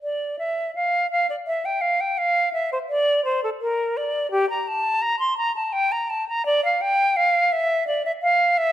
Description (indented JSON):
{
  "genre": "classical, baroque-style fantasia for unaccompanied flute",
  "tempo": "56 BPM (dotted quarters)",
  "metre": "6/8",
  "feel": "rubato",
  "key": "D minor",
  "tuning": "A4 = 440 Hz",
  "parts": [
    { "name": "concert flute", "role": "solo", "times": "0.0-8.7 s", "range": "G4 to C6", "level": "-20 LUFS", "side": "equal", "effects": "none" }
  ],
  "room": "moderate recital hall reverb, RT60 1.7 s",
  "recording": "dark, warm production",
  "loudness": "-20 LUFS",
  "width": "side -12 dB against mid",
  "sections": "0.0-8.7 A section",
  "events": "none",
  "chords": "none",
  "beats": "| 0.03 1.11 | 2.18 3.24 | 4.32 5.38 | 6.46 7.53 | 8.58"
}